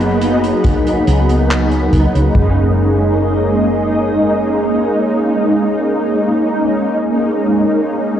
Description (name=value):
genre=vaporwave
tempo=70 BPM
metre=4/4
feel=straight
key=F# major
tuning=A4 = 440 Hz
part: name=mellow synth brass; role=accompaniment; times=0.0-8.2 s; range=F#3 to D#4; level=-14 LUFS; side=equal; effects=ensemble chorus, tape echo
part: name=soft string machine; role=sustained chords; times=0.0-6.5 s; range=A#3 to B5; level=-21 LUFS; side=equal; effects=phaser, ensemble chorus
part: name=woody fretless electric bass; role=bass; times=0.0-4.9 s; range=F#1 to C#2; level=-16 LUFS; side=equal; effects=low-pass filter
part: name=soft-mallet drum kit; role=drums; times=0.0-2.3 s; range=handclaps, hi-hat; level=-26 LUFS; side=right 1 dB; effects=none
part: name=kick drum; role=drums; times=0.6-2.5 s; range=none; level=-18 LUFS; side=equal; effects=none
room=moderate plate reverb, RT60 3.1 s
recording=dreamy mix soaked in reverb, cassette tape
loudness=-12 LUFS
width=side -10 dB against mid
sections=0.0-2.4 A section; 2.4-5.8 B section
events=filter sweep on fretless electric bass 0.0-2.4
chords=0.0 G#m7/F#; 2.4 F#69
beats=0.64 1.50 | 2.36 3.21 4.07 4.93